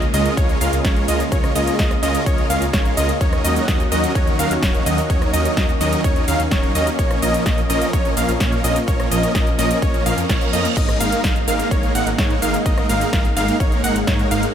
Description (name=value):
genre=EDM, festival progressive house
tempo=127 BPM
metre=4/4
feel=straight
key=unclear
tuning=A4 = 440 Hz
part: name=lush unison pad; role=sustained chords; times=0.0-14.5 s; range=Db3 to Gb4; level=-26 LUFS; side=equal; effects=chorus, sidechain pumping
part: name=plucky unison lead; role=arpeggios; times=0.0-14.5 s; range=Db5 to Gb5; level=-23 LUFS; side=equal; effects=sidechain pumping, analog delay
part: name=supersaw chords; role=riff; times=0.0-14.5 s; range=F3 to Gb5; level=-22 LUFS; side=right 1 dB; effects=sidechain pumping, analog delay
part: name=wide detuned saw bass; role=bass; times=0.0-14.5 s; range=Eb1 to Bb2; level=-24 LUFS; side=equal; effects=chorus, sidechain pumping
part: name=big-room dance drum kit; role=drums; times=0.0-14.5 s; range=crash cymbal, hi-hat, ride cymbal, rim click, shaker, snare drum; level=-26 LUFS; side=equal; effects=none
part: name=electronic kick drum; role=drums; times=0.4-14.2 s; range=none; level=-19 LUFS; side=equal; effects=none
part: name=reverse cymbal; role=sound effects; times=10.0-10.8 s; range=none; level=-32 LUFS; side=right 6 dB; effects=none
room=moderate huge ambient reverb, RT60 9.5 s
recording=dreamy mix soaked in reverb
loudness=-16 LUFS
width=side -9 dB against mid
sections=0.0-14.5 A section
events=reverse cymbal 10.0-10.8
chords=0.0 Db6; 3.2 Ebm7; 7.0 Bbm; 10.8 Absus2